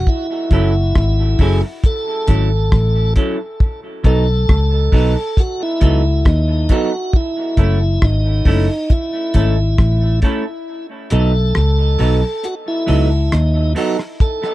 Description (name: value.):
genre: dub reggae.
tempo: 68 BPM.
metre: 4/4.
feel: straight.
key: F# dorian.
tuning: A4 = 441 Hz.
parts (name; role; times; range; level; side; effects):
tonewheel organ; melody; 0.0-14.5 s; D#4 to A4; -21 LUFS; equal; overdrive, slow rotary speaker, dub echo.
vintage muted fingered electric bass; bass; 0.0-13.7 s; F#1 to D#2; -14 LUFS; equal; none.
cloth-damped thuddy drum kit; drums; 0.1-14.5 s; hi-hat, kick drum, rim click; -15 LUFS; equal; none.
semi-hollow electric guitar; accompaniment; 0.5-14.0 s; F#3 to A4; -23 LUFS; right 2 dB; dub echo.
room: little or no reverb.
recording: dry, close 1970s-style studio recording.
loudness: -13 LUFS.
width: side -16 dB against mid.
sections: 0.1-14.5 A section.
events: kick muted 10.7-14.2.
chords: 0.1 F#m7; 3.6 B7; 7.1 F#m7; 10.7 B7.